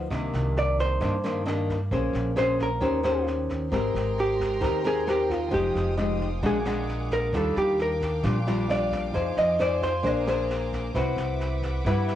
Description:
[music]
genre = bossa nova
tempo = 133 BPM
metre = 4/4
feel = straight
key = unclear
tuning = A4 = 440 Hz
[part]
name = nylon-string guitar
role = accompaniment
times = 0.0-12.2 s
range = G2 to C5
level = -27 LUFS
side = left 2 dB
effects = plate reverb
[part]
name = upright bass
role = bass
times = 0.0-12.2 s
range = F1 to G2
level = -30 LUFS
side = right 1 dB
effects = none
[part]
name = jazz brush drum kit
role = drums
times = 0.1-12.1 s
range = kick drum, rim click, snare drum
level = -37 LUFS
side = right 1 dB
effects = cassette tape
[part]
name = vintage hollow-body jazz guitar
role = melody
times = 0.6-10.5 s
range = F4 to Eb5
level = -26 LUFS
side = right 1 dB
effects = cassette tape, plate reverb
[part]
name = bright studio violin section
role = sustained chords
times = 3.7-12.2 s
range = D4 to Eb6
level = -38 LUFS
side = right 2 dB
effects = plate reverb
[sound]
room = moderate studio reverb, RT60 0.6 s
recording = home recording on cassette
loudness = -23 LUFS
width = side -12 dB against mid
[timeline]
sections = 0.0-12.2 A section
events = hollow-body jazz guitar solo 0.0-12.2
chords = 0.1 Cm9; 1.9 Bbm9; 2.8 Eb6; 3.7 Abmaj9; 5.5 Fm9; 6.4 Bbaug7; 7.3 Ebmaj9; 9.1 Fm7; 10.0 Bb9; 11.0 Cmaj9#11

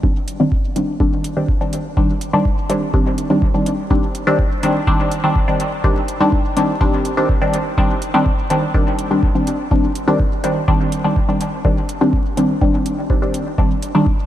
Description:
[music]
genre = dub techno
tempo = 124 BPM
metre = 4/4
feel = straight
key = C minor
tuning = A4 = 440 Hz
[part]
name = filtered dub chord stab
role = stabs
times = 0.0-14.1 s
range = Eb3 to D4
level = -17 LUFS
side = equal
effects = chorus, phaser, sidechain pumping, dub echo
[part]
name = electronic kick drum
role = drums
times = 0.0-14.2 s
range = none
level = -18 LUFS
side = equal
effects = overdrive
[part]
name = electronic hi-hat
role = drums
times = 0.3-13.9 s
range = none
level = -36 LUFS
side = right 3 dB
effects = overdrive, dub echo
[sound]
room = moderate huge ambient reverb, RT60 7.8 s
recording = dreamy mix soaked in reverb, vinyl crackle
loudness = -15 LUFS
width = side -12 dB against mid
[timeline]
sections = 0.0-14.3 A section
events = none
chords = 0.0 Cmadd9

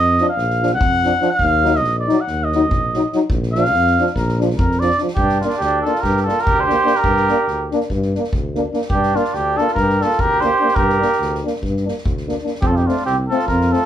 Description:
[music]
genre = balkan folk, Balkan brass band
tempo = 289 BPM (eighths)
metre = 9/8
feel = straight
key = G minor from 5.2 s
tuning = A4 = 440 Hz
[part]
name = cornet with cup mute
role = melody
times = 0.0-13.9 s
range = F4 to Gb5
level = -18 LUFS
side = equal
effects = none
[part]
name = mellow tuba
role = bass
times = 0.0-13.7 s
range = Bb1 to G2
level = -21 LUFS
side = equal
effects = none
[part]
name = mellow trombone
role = accompaniment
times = 0.2-13.8 s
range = C4 to Eb4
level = -22 LUFS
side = left 7 dB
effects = none
[part]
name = warm euphonium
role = accompaniment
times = 0.2-13.8 s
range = F3 to Bb3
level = -24 LUFS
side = right 4 dB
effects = none
[part]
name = soft-mallet drum kit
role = percussion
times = 0.2-13.9 s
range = kick drum, snare drum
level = -24 LUFS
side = equal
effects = none
[part]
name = warm flugelhorn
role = second line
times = 5.2-13.9 s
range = C4 to Bb4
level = -22 LUFS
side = right 5 dB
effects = none
[sound]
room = moderate studio reverb, RT60 0.5 s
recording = band playing live in one room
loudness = -15 LUFS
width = side -10 dB against mid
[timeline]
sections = 0.0-5.2 A section; 5.2-13.9 B section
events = cornet solo 0.0-5.2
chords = 0.0 Bb; 1.4 Ebm; 3.3 Bb; 5.2 Gm; 12.6 F

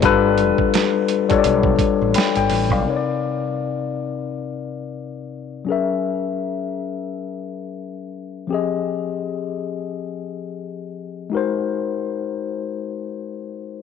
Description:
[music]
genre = R&B, neo-soul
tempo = 85 BPM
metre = 4/4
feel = swing 59% on 16ths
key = unclear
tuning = A4 = 445 Hz
[part]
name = tine electric piano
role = accompaniment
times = 0.0-13.8 s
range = C3 to B5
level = -21 LUFS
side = left 8 dB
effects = medium stereo tremolo
[part]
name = mellow fretless electric bass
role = bass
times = 0.0-2.8 s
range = G1 to B1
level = -23 LUFS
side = right 2 dB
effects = tube saturation, ensemble chorus
[part]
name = dusty soul sampler-style drum kit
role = drums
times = 0.0-2.8 s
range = hi-hat, kick drum, snare drum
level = -22 LUFS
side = right 4 dB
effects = none
[sound]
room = moderate plate reverb, RT60 3.5 s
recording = 1960s-style stereo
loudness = -19 LUFS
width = side -6 dB against mid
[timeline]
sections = 0.0-2.9 A section; 2.9-13.8 B section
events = none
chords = 0.0 G7; 2.9 Cm7; 5.7 F#9; 8.5 Fm7; 11.3 Ab9

